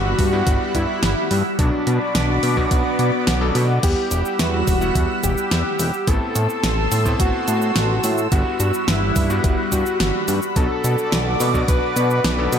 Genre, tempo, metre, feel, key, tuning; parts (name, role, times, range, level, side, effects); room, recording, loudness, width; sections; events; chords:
synthwave; 107 BPM; 4/4; straight; E minor; A4 = 440 Hz
wide unison lead; melody; 0.0-12.6 s; B3 to B4; -24 LUFS; equal; vintage 12-bit sampler grit, ping-pong delay
lush unison pad; sustained chords; 0.0-12.6 s; G3 to E6; -24 LUFS; equal; chorus, phaser, sidechain pumping
bright electric grand piano; stabs; 0.0-12.6 s; G2 to F#5; -28 LUFS; left 1 dB; tape echo
fat analog bass; bass; 0.0-12.6 s; E1 to B2; -21 LUFS; equal; tube saturation
electronic kick drum; drums; 0.2-11.8 s; -21 LUFS; equal
pop drum kit; drums; 0.2-12.6 s; cabasa, crash cymbal, hi-hat, snare drum; -24 LUFS; equal; gated reverb
light reverb; -17 LUFS; side -8 dB against mid
0.0-12.6 A section
0.0 Emadd9/G; 1.6 Bm; 3.8 Emadd9; 6.1 Amadd9; 8.3 Emadd9/G; 10.6 Bm